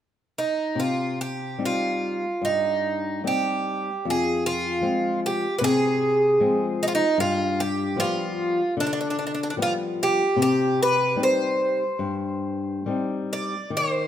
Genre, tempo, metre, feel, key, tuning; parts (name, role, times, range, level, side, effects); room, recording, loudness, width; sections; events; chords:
fado; 74 BPM; 4/4; rubato; C harmonic minor; A4 = 440 Hz
picked twelve-string acoustic guitar; melody; 0.4-14.1 s; D4 to D5; -23 LUFS; right 2 dB
flamenco guitar; accompaniment; 0.8-14.1 s; F2 to Eb4; -26 LUFS; left 3 dB
moderate recital hall reverb, RT60 1.6 s; minimal, uncompressed stereo recording; -22 LUFS; side -10 dB against mid
0.8-13.7 A section
0.0 N.C.; 0.8 Cm; 4.0 Fm; 7.2 G7; 10.4 Cm